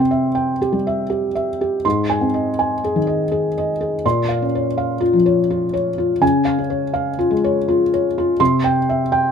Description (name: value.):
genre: neoclassical minimalist piano.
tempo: 82 BPM.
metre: 3/4.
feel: rubato.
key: unclear.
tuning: A4 = 440 Hz.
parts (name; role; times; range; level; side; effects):
felt-muted upright piano; solo; 0.0-9.3 s; Ab2 to C6; -16 LUFS; left 1 dB; none.
room: light reverb.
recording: minimal, uncompressed stereo recording.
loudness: -16 LUFS.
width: side -7 dB against mid.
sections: 0.0-9.3 A section.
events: none.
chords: 0.0 C; 1.8 Ab; 4.0 Bbmadd9; 6.2 Db; 8.4 C.